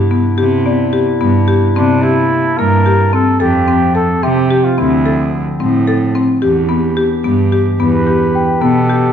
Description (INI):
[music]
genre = contemporary instrumental, chamber music in an uneven meter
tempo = 219 BPM (eighths)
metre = 11/8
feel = straight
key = unclear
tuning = A4 = 439 Hz
[part]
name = dark woodwind section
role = sustained chords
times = 0.0-9.1 s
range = C3 to A5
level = -21 LUFS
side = left 1 dB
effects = none
[part]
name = rich cello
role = bass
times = 0.0-9.1 s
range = D2 to C3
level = -15 LUFS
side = right 3 dB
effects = none
[part]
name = buzzing marimba with medium hard mallets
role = arpeggios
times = 0.1-9.0 s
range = Bb3 to A4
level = -15 LUFS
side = left 4 dB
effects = none
[part]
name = large celesta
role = texture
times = 0.7-9.1 s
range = D5 to G5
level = -23 LUFS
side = left 6 dB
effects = none
[part]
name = warm flugelhorn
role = melody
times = 1.8-9.1 s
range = D4 to B4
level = -16 LUFS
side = right 2 dB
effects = none
[sound]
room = moderate scoring stage reverb, RT60 1.7 s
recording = dark, warm production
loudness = -11 LUFS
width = side -8 dB against mid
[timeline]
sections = 0.0-9.1 A section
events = none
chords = 0.0 Cmaj9; 1.8 C13; 3.4 F6; 4.8 Dm7; 6.4 Em7